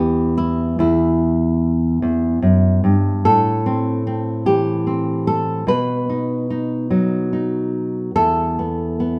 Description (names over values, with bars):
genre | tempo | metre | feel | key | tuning
folk, solo fingerstyle acoustic guitar | 49 BPM (dotted quarters) | 6/8 | rubato | unclear | A4 = 441 Hz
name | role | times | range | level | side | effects
nylon-string guitar | solo | 0.0-9.2 s | E2 to B4 | -19 LUFS | equal | none
room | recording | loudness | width
moderate recital hall reverb, RT60 1.7 s | none | -19 LUFS | mono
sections
0.0-9.2 A section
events
none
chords
0.0 Em; 3.2 Am; 5.7 B; 8.1 E5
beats
| 0.79 2.02 | 3.24 4.46 | 5.67 6.89 | 8.15